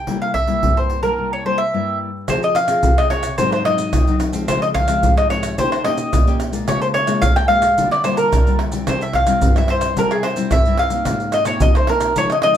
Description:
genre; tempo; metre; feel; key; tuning
samba and choro; 109 BPM; 4/4; straight; unclear; A4 = 440 Hz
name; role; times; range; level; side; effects
mandolin; melody; 0.0-12.6 s; Ab4 to G5; -18 LUFS; equal; none
nylon-string guitar; accompaniment; 0.0-12.6 s; G2 to Ab4; -23 LUFS; left 3 dB; none
surdo, pandeiro, maracas and tamborim; percussion; 0.1-12.6 s; none; -19 LUFS; right 1 dB; none
room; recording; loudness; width
wet studio ambience, RT60 0.5 s; band playing live in one room; -15 LUFS; side -10 dB against mid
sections
0.0-2.3 A section; 2.3-12.6 B section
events
break 1.2-2.3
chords
0.1 C7; 2.3 Fm; 3.4 Ab7; 4.5 Dbmaj7; 5.6 Eb7; 6.7 Db6; 7.8 Bb6/D; 8.9 C; 11.1 Abadd9

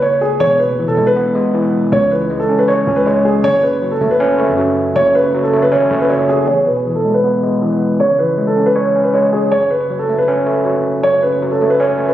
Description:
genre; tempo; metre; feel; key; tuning
hip hop, trap; 158 BPM; 4/4; half-time; unclear; A4 = 441 Hz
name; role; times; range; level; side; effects
dark concert grand piano; melody; 0.0-12.1 s; G#4 to C#5; -14 LUFS; equal; low-pass filter, ping-pong delay
long sustained 808-style bass; bass; 0.0-6.5 s; E1 to F#2; -24 LUFS; equal; none
overdriven tine electric piano; accompaniment; 0.4-12.1 s; E2 to C#5; -16 LUFS; equal; low-pass filter
room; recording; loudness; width
light reverb, small room ambience; recorded on a phone in the room, studio reverb, compression; -12 LUFS; side -12 dB against mid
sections
0.0-6.5 A section; 6.5-12.1 B section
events
filter sweep 6.5-12.1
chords
0.4 E; 1.9 C#m; 3.4 F#m; 6.5 E; 8.0 C#m; 9.5 F#m

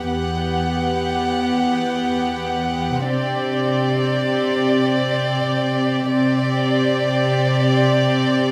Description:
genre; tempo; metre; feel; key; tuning
cinematic; free time; none; none; unclear; A4 = 441 Hz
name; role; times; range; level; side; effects
warm chamber violin section; melody; 0.0-8.5 s; D5 to F#5; -25 LUFS; equal; none
warm studio violin section; second line; 0.0-8.5 s; G4; -28 LUFS; equal; none
rich studio viola section; accompaniment; 0.0-8.5 s; B3 to C4; -25 LUFS; equal; none
concert harp; arpeggios; 0.0-6.9 s; C3 to G4; -32 LUFS; equal; none
warm studio cello section; bass; 0.0-8.5 s; E2 to C3; -26 LUFS; equal; none
room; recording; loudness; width
light reverb; close, detailed microphones; -20 LUFS; mono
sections
0.0-8.5 A section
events
none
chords
0.0 Emadd9; 3.1 Csus2

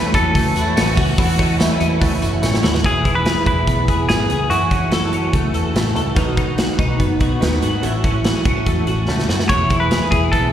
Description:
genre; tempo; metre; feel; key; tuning
jangly indie pop; 144 BPM; 4/4; straight; E major; A4 = 440 Hz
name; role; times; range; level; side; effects
semi-hollow electric guitar; melody; 0.0-5.7, 9.5-10.5 s; F#4 to C#5; -20 LUFS; left 1 dB; slapback echo, ping-pong delay
mellow reed electric piano; accompaniment; 0.0-10.5 s; B3 to E5; -27 LUFS; right 4 dB; fast tremolo, slapback echo
picked twelve-string acoustic guitar; accompaniment; 0.0-10.5 s; F#2 to A4; -29 LUFS; right 6 dB; slapback echo
twelve-string electric guitar; arpeggios; 0.0-10.5 s; D#3 to A4; -21 LUFS; left 3 dB; ensemble chorus, slapback echo
vintage muted picked electric bass; bass; 0.1-10.5 s; E1 to G#2; -21 LUFS; equal; none
big rock drum kit; drums; 0.1-10.4 s; hi-hat, kick drum, snare drum; -20 LUFS; equal; none
tambourine; percussion; 0.1-2.7 s; none; -34 LUFS; right 2 dB; none
warm studio violin section; second line; 0.6-2.4 s; E4 to F#4; -25 LUFS; equal; slapback echo
room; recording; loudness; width
light reverb, studio reverb; live gig heard through the venue's PA, recital hall reverb; -15 LUFS; side -10 dB against mid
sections
0.0-2.8 A section; 2.8-10.5 B section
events
drum fill 2.4-2.8, 9.1-9.5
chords
0.0 F#m7; 2.8 E; 4.5 F#m7; 6.2 B; 7.8 A6; 9.5 E

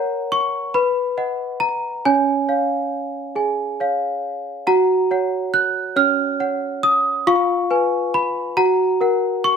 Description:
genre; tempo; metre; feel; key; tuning
classical, lullaby for celesta; 46 BPM (dotted quarters); 6/8; straight; F# major; A4 = 442 Hz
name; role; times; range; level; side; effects
worn celesta; solo; 0.0-9.6 s; C#4 to F#6; -17 LUFS; equal; slapback echo
room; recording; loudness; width
light reverb; close, detailed microphones; -17 LUFS; side -6 dB against mid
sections
0.0-9.6 A section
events
none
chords
0.0 F#/A#; 0.7 B; 2.0 C#; 4.7 F#; 7.3 C#7/E#; 8.6 F#

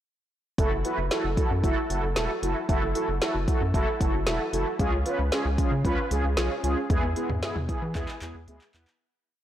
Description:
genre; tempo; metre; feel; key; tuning
synth-pop; 114 BPM; 4/4; straight; F# minor; A4 = 440 Hz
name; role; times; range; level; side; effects
mellow synth brass; accompaniment; 0.6-8.9 s; B3 to B4; -28 LUFS; right 1 dB; chorus
rubbery square bass; bass; 0.6-8.9 s; E1 to E3; -28 LUFS; equal; none
deep house drum kit; drums; 0.6-9.0 s; handclaps, hi-hat, kick drum, snare drum, toms; -28 LUFS; equal; none
room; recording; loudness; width
light reverb; blown-out, overdriven recording, overdrive; -24 LUFS; side -11 dB against mid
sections
0.6-9.0 verse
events
fade-out 6.9-9.0; drum fill 8.0-9.0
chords
0.6 F#m7; 4.8 C#; 6.9 E

